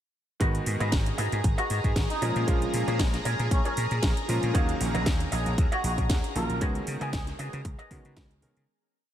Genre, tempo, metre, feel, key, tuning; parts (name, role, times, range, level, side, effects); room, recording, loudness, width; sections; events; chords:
nu-disco, nu disco; 116 BPM; 4/4; swing 54% on 16ths; G# dorian; A4 = 439 Hz
warm electric grand piano; accompaniment; 0.4-8.7 s; D#3 to E#5; -33 LUFS; right 1 dB; diffuse ambient delay
lush unison pad; sustained chords; 0.4-8.7 s; G#4 to A#5; -36 LUFS; equal; chorus, sidechain pumping
electric guitar with an envelope filter; riff; 0.4-8.2 s; E#4 to D#5; -35 LUFS; equal; wide subtle chorus, diffuse ambient delay
vintage slap bass; bass; 0.4-8.6 s; G#1 to C#3; -30 LUFS; equal
electronic kick drum; drums; 0.4-8.3 s; -27 LUFS; equal
house drum kit; drums; 0.4-8.7 s; hi-hat, rim click, snare drum; -35 LUFS; equal
muted trumpet section; melody; 1.6-7.2 s; C#4 to A#4; -36 LUFS; right 1 dB; diffuse ambient delay
light reverb; -24 LUFS; side -11 dB against mid
0.4-8.7 drop
drop 0.4-8.7; fade-out 5.9-8.7
0.4 G#m7; 2.2 A#m7; 4.5 D#m9; 6.6 C#9sus4